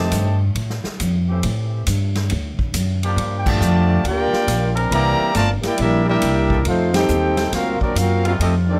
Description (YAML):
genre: jazz, big band swing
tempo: 138 BPM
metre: 4/4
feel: swing 66% on 8ths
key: F major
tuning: A4 = 443 Hz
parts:
  - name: clear trumpet section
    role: melody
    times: 0.0-0.4, 3.4-8.8 s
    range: C4 to Bb5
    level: -24 LUFS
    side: equal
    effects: none
  - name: bright trombone section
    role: second line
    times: 0.0-0.4, 3.4-8.8 s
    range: C3 to G4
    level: -24 LUFS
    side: equal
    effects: none
  - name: mellow trombone section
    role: sustained chords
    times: 0.0-8.8 s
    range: Eb3 to Bb4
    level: -29 LUFS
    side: equal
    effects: none
  - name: upright bass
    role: bass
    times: 0.0-8.8 s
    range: G1 to A2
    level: -22 LUFS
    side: equal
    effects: none
  - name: swinging big-band drum kit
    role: drums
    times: 0.1-8.5 s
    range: crash cymbal, hi-hat, kick drum, ride cymbal, snare drum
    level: -28 LUFS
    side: equal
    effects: none
room: light reverb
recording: close, detailed microphones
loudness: -19 LUFS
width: mono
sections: 0.0-8.8 A section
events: band accent 3.4, 6.9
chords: 0.0 F9; 1.4 Am7; 2.3 Daug; 3.2 Gm7; 4.9 C9; 6.7 F9; 7.5 D7alt